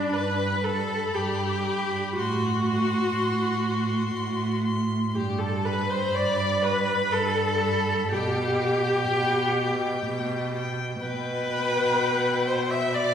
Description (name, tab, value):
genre	classical, slow romantic movement for string quartet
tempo	61 BPM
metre	3/4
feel	rubato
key	G major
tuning	A4 = 440 Hz
part	rich violin	melody	0.0-13.1 s	D4 to E5	-33 LUFS	left 6 dB	none
part	warm violin	second line	0.0-13.1 s	G5 to C6	-34 LUFS	left 3 dB	none
part	rich viola	accompaniment	0.0-13.1 s	D4 to E5	-26 LUFS	equal	none
part	warm cello	bass	0.0-13.1 s	G2 to B2	-28 LUFS	right 2 dB	none
room	wet recital hall reverb, RT60 1.8 s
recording	recorded in a church or concert hall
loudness	-23 LUFS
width	side -8 dB against mid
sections	0.0-13.1 A section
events	none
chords	0.0 G; 2.2 Am6; 5.2 G; 8.1 G/B